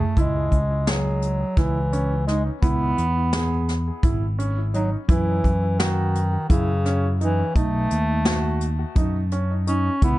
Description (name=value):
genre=progressive instrumental, band music in an uneven meter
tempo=170 BPM (eighths)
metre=7/8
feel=straight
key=C# minor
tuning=A4 = 440 Hz
part: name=warm bass clarinet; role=melody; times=0.0-10.2 s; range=C#3 to C#4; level=-25 LUFS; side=equal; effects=ping-pong delay
part: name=picked electric bass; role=bass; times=0.0-10.2 s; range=G#1 to F#2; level=-23 LUFS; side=equal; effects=none
part: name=warm grand piano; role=arpeggios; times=0.2-10.2 s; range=C#4 to G#4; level=-30 LUFS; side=right 3 dB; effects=ping-pong delay
part: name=jazz brush drum kit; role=drums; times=0.2-10.2 s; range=hi-hat, kick drum, snare drum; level=-22 LUFS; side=equal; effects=none
room=little or no reverb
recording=nothing above 10.4 kHz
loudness=-19 LUFS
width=side -16 dB against mid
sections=0.2-10.2 A section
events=drum fill 0.0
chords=0.2 C#m7; 5.1 F#5; 7.6 B7